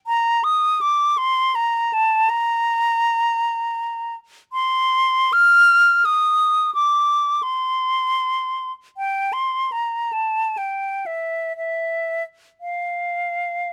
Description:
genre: classical, free, expressive piece for unaccompanied flute.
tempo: 57-89 BPM.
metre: 3/4.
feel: rubato.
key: unclear.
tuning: A4 = 440 Hz.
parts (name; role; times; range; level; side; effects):
silver concert flute; solo; 0.1-13.7 s; E5 to F6; -20 LUFS; equal; none.
room: light reverb.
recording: close, detailed microphones.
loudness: -20 LUFS.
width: mono.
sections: 0.0-13.7 A section.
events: none.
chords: none.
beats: | 0.08 0.81 1.55 | 2.29 3.04 3.77 | 4.52 5.33 6.05 | 6.75 7.44 8.21 | 8.97 9.72 10.58 | 11.58 12.60 13.60.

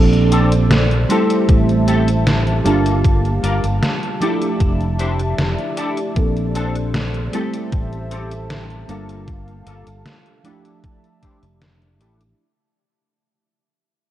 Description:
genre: vaporwave.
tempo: 77 BPM.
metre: 4/4.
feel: straight.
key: F major.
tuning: A4 = 440 Hz.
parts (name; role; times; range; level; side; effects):
mellow FM electric piano; accompaniment; 0.0-12.4 s; F3 to A5; -20 LUFS; right 2 dB; phaser, lush chorus, tape echo.
warbly tape-like pad; sustained chords; 0.0-12.4 s; Bb3 to A5; -27 LUFS; left 1 dB; chorus, built-in reverb, vintage 12-bit sampler grit.
fingered electric bass; bass; 0.0-12.3 s; F1 to Bb1; -19 LUFS; equal; tube saturation, low-pass filter.
detuned 8-bit digital drum machine; drums; 0.1-12.4 s; hi-hat, snare drum; -22 LUFS; equal; gated reverb.
semi-hollow electric guitar; riff; 0.3-12.2 s; Bb3 to C5; -26 LUFS; left 2 dB; ensemble chorus, low-pass filter, tape echo.
electronic kick drum; drums; 1.5-11.4 s; none; -16 LUFS; equal; overdrive.
room: light reverb.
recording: cassette tape.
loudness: -15 LUFS.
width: side -12 dB against mid.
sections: 0.0-12.4 A section.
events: fade-out 0.0-12.4; filter sweep on fingered electric bass 0.0-12.4; filter sweep on clean electric guitar 0.0-12.4.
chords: 0.0 Bbmaj9; 1.1 Am7; 2.7 Gm9; 4.2 Fmaj13; 6.2 Bbmaj9; 7.3 Am7; 8.9 Gm9; 10.4 Fmaj13.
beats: 0.71 1.49 2.27 | 3.04 3.82 4.60 5.38 | 6.16 6.94 7.72 8.50 | 9.28 10.06 10.84 11.62.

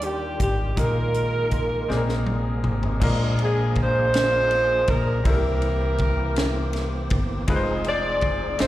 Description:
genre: slow gospel.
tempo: 54 BPM (dotted quarters).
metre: 6/8.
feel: straight.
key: unclear.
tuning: A4 = 440 Hz.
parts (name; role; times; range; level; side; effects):
mellow horn section; melody; 0.0-8.7 s; Eb4 to D5; -24 LUFS; equal; plate reverb.
warm alto saxophone; melody; 0.0-2.3 s; G4 to Bb4; -28 LUFS; right 3 dB; plate reverb, slapback echo.
bright baby grand piano; accompaniment; 0.0-8.7 s; Bb2 to D5; -30 LUFS; left 2 dB; plate reverb, slapback echo.
mellow French horn section; sustained chords; 0.0-3.0 s; Eb3 to D5; -41 LUFS; right 1 dB; none.
tonewheel organ; sustained chords; 0.0-8.7 s; C3 to A4; -31 LUFS; right 2 dB; fast rotary speaker, overdrive, chorus vibrato, plate reverb.
upright bass; bass; 0.0-8.7 s; F1 to Eb2; -25 LUFS; equal; none.
tight funk drum kit; drums; 0.0-8.7 s; crash cymbal, hi-hat, kick drum, ride cymbal, snare drum, toms; -27 LUFS; equal; none.
room: light reverb.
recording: live gig heard through the venue's PA, recital hall reverb.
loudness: -20 LUFS.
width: side -14 dB against mid.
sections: 0.0-3.0 A section; 3.0-8.7 B section.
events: drum fill 1.9-3.0.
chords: 0.0 Ebmaj9; 0.8 Bb7sus4; 1.9 Bb9; 3.0 Bb7; 5.3 C7; 7.5 Fm7.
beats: | 0.78 1.90 | 3.02 4.14 | 5.25 6.37 | 7.48 8.60.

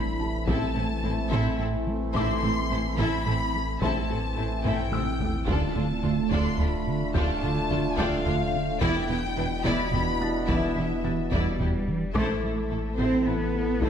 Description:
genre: cinematic, hybrid orchestral and electronic film score.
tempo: 72 BPM (dotted quarters).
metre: 6/8.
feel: straight.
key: A minor.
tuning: A4 = 439 Hz.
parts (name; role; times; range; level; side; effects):
warm studio violin section; melody; 0.0-13.9 s; E5 to C6; -33 LUFS; left 4 dB; none.
ethereal airy pad; sustained chords; 0.0-13.9 s; E3 to B4; -34 LUFS; right 2 dB; ensemble chorus, built-in reverb, phaser.
mellow French horn section; sustained chords; 0.0-13.9 s; C4 to A4; -35 LUFS; left 2 dB; none.
warm trombone section; sustained chords; 0.0-11.8 s; B2 to B3; -35 LUFS; right 2 dB; none.
smooth gliding synth bass; riff; 0.0-13.9 s; D2 to A3; -32 LUFS; right 2 dB; none.
punchy sub bass; bass; 0.0-13.9 s; D1 to A1; -33 LUFS; left 1 dB; none.
sub drop; sound effects; 0.0-0.5 s; none; barely audible; none; none.
felt-muted upright piano; texture; 0.0-13.9 s; D4 to A6; -42 LUFS; left 3 dB; none.
rich symphonic violin section; second line; 0.5-13.9 s; B3 to E5; -36 LUFS; left 3 dB; none.
rich symphonic viola section; accompaniment; 0.5-13.9 s; B3 to F4; -35 LUFS; equal; none.
warm symphonic cello section; bass; 0.5-13.9 s; D2 to C4; -32 LUFS; right 2 dB; none.
warm symphonic double bass section; bass; 0.5-13.9 s; E1 to D2; -34 LUFS; right 2 dB; none.
taiko ensemble; drums; 0.5-13.9 s; none; -33 LUFS; left 1 dB; none.
room: moderate scoring stage reverb, RT60 2.0 s.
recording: none.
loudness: -24 LUFS.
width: side -8 dB against mid.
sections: 0.0-12.2 A section; 12.2-13.9 A section.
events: impact 0.0-0.5; drum fill 4.7-5.5; band accent 12.2-12.7.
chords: 0.0 Am; 5.5 Dm; 8.8 Em7; 12.2 Am.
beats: | 0.48 1.32 | 2.15 2.98 | 3.82 4.65 | 5.48 6.32 | 7.15 7.98 | 8.82 9.65 | 10.48 11.32 | 12.15 12.98 | 13.82.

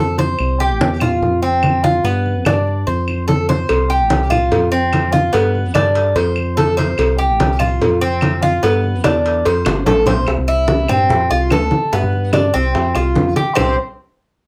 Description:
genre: latin, Cuban son and guajira.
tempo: 146 BPM.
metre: 4/4.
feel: straight.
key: C major.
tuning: A4 = 440 Hz.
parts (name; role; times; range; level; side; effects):
Cuban tres; arpeggios; 0.0-13.8 s; B3 to C5; -19 LUFS; equal; none.
round analog bass; bass; 0.0-13.8 s; G1 to G2; -21 LUFS; equal; none.
congas; percussion; 0.2-13.7 s; none; -22 LUFS; equal; none.
claves; percussion; 0.4-13.7 s; none; -29 LUFS; equal; none.
cowbell and bongos; percussion; 3.7-13.7 s; none; -22 LUFS; equal; none.
room: wet studio ambience, RT60 0.5 s.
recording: heard from further back in the room.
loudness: -16 LUFS.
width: mono.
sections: 0.0-10.3 A section; 10.3-13.6 B section.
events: drum fill 9.7-10.3.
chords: 0.4 C; 1.2 F5; 2.0 G7; 2.9 F; 3.7 C5; 4.5 F5; 5.3 G; 6.2 F; 7.0 C5; 7.8 F5; 8.6 G; 9.5 F; 10.3 C; 11.1 F; 11.9 G; 12.7 F5; 13.6 C5.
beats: | 0.40 0.81 1.22 1.63 | 2.04 2.46 2.87 3.28 | 3.69 4.10 4.52 4.93 | 5.34 5.75 6.16 6.57 | 6.99 7.40 7.81 8.22 | 8.63 9.04 9.45 9.87 | 10.28 10.69 11.10 11.51 | 11.92 12.34 12.75 13.16 | 13.57.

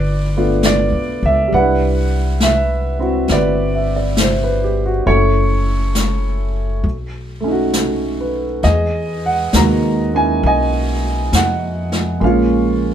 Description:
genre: jazz ballad.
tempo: 67 BPM.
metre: 4/4.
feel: swing 67% on 8ths.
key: unclear.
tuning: A4 = 440 Hz.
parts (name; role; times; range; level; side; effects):
warm concert grand piano; accompaniment; 0.0-12.9 s; G3 to A#5; -17 LUFS; right 2 dB; none.
upright bass; bass; 0.0-12.9 s; Gb1 to F2; -18 LUFS; left 1 dB; none.
jazz brush drum kit; drums; 0.6-12.9 s; brushed snare drum, hi-hat, snare drum; -21 LUFS; left 1 dB; none.
room: light reverb.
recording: band playing live in one room.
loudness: -14 LUFS.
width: side -9 dB against mid.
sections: 0.0-12.9 A section.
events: none.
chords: 0.0 G9; 1.5 Cmaj9; 5.1 Gbm7; 6.8 B9; 8.6 Emaj9#11; 12.2 Bbm7.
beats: 0.63 | 1.51 2.40 3.28 4.17 | 5.06 5.95 6.84 7.74 | 8.64 9.54 10.43 11.33 | 12.21.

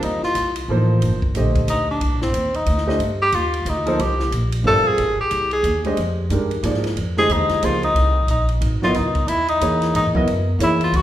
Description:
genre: modal jazz.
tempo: 181 BPM.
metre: 3/4.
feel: swing 62% on 8ths.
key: C dorian.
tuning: A4 = 441 Hz.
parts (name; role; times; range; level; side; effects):
warm tenor saxophone; melody; 0.0-11.0 s; C4 to A4; -20 LUFS; left 1 dB; none.
warm baby grand piano; accompaniment; 0.0-10.8 s; D3 to Eb5; -23 LUFS; right 1 dB; none.
upright bass; bass; 0.0-11.0 s; G1 to Ab2; -21 LUFS; equal; none.
compact cocktail drum kit; drums; 0.0-11.0 s; hi-hat, kick drum, ride cymbal, snare drum; -29 LUFS; equal; none.
room: wet recital hall reverb, RT60 1.3 s.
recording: recorded in a church or concert hall.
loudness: -17 LUFS.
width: side -12 dB against mid.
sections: 0.0-5.0 A section; 5.0-11.0 A section.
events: tenor saxophone solo 0.0-11.0.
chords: 0.0 Cm9; 5.0 Fm9; 9.0 Dbmadd9.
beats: | 0.02 0.35 0.69 | 1.01 1.35 1.68 | 2.01 2.34 2.67 | 3.00 3.33 3.66 | 3.99 4.32 4.65 | 4.99 5.32 5.65 | 5.98 6.31 6.64 | 6.97 7.30 7.63 | 7.96 8.29 8.62 | 8.95 9.29 9.62 | 9.95 10.28 10.61 | 10.94.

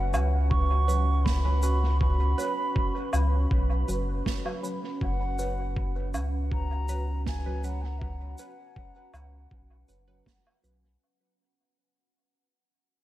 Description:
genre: ambient dub.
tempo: 80 BPM.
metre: 4/4.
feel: straight.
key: unclear.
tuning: A4 = 441 Hz.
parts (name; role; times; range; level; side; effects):
mellow wooden flute; melody; 0.0-10.3 s; E5 to C#6; -34 LUFS; right 2 dB; dub echo.
deep dark ambient pad; sustained chords; 0.0-11.0 s; C#4 to B4; -38 LUFS; right 1 dB; chorus, built-in reverb.
soft dub sub bass; bass; 0.0-11.0 s; F#1 to C#2; -26 LUFS; equal; none.
filtered dub chord stab; stabs; 0.1-10.9 s; F#3 to B4; -37 LUFS; right 2 dB; phaser, dub echo.
shaker, woodblock and snare drum; drums; 0.1-10.8 s; none; -36 LUFS; right 2 dB; dub echo.
electronic kick drum; drums; 0.5-10.4 s; none; -30 LUFS; equal; none.
room: small room ambience.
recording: none.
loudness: -25 LUFS.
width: side -15 dB against mid.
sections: 0.0-11.0 A section.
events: fade-out 3.0-11.0.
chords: 0.0 F#sus4.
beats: 0.51 1.26 | 2.01 2.76 3.51 4.26 | 5.01 5.76 6.51 7.26 | 8.01 8.76 9.51 10.26.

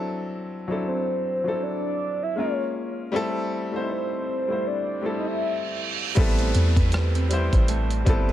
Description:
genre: contemporary R&B.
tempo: 79 BPM.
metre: 4/4.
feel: swing 58% on 16ths.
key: A dorian.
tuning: A4 = 439 Hz.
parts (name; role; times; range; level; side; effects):
clear concert grand piano; accompaniment; 0.0-8.3 s; F#3 to C5; -28 LUFS; left 2 dB; none.
downlifter and reverse cymbal; sound effects; 0.0-0.1, 5.3-8.3 s; none; -33 LUFS; right 5 dB; none.
soft octave-layered synth lead; melody; 0.9-5.8 s; C5 to E5; -27 LUFS; equal; chorus, phaser.
picked old ladder-braced acoustic guitar; arpeggios; 6.2-8.3 s; A3 to B4; -31 LUFS; right 8 dB; ping-pong delay.
soft 808-style bass; bass; 6.2-8.3 s; G1 to E2; -22 LUFS; equal; none.
dusty soul sampler-style drum kit; drums; 6.2-8.3 s; hi-hat, kick drum, rim click; -22 LUFS; equal; overdrive.
room: little or no reverb.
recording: none.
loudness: -22 LUFS.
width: side -12 dB against mid.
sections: 0.0-6.2 A section; 6.2-8.3 B section.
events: reverse cymbal 5.3-6.2.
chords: 0.0 D9; 2.4 C#6; 3.1 C6; 6.2 Am9.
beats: | 0.09 0.85 1.61 2.37 | 3.13 3.89 4.65 5.41 | 6.17 6.93 7.69.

